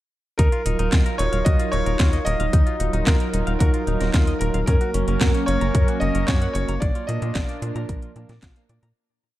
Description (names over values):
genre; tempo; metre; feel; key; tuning
italo disco; 112 BPM; 4/4; straight; Eb minor; A4 = 440 Hz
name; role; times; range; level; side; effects
bright concert grand piano; melody; 0.4-8.6 s; Bb4 to Eb5; -27 LUFS; equal; ping-pong delay
warm analog pad; sustained chords; 0.4-8.9 s; Gb3 to F5; -30 LUFS; equal; chorus
direct-recorded clean electric guitar; arpeggios; 0.4-8.9 s; Db4 to Bb5; -34 LUFS; left 4 dB; ping-pong delay
tight sequencer bass; bass; 0.4-8.9 s; Eb1 to Bb2; -24 LUFS; equal; tube saturation
electronic kick drum; drums; 0.4-8.5 s; none; -20 LUFS; equal; none
house drum kit; drums; 0.4-8.9 s; handclaps, hi-hat, snare drum; -29 LUFS; equal; none
mellow synth brass; stabs; 0.7-8.9 s; F3 to Bb4; -30 LUFS; right 5 dB; chorus, cassette tape
room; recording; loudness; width
little or no reverb; dark, warm production; -18 LUFS; side -15 dB against mid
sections
0.4-9.0 chorus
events
fade-out 6.1-9.0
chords
0.4 Ebmadd9; 4.7 Gb; 6.8 Bb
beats
| 0.39 0.93 1.46 2.00 | 2.53 3.07 3.60 4.14 | 4.68 5.21 5.75 6.28 | 6.82 7.35 7.89 8.43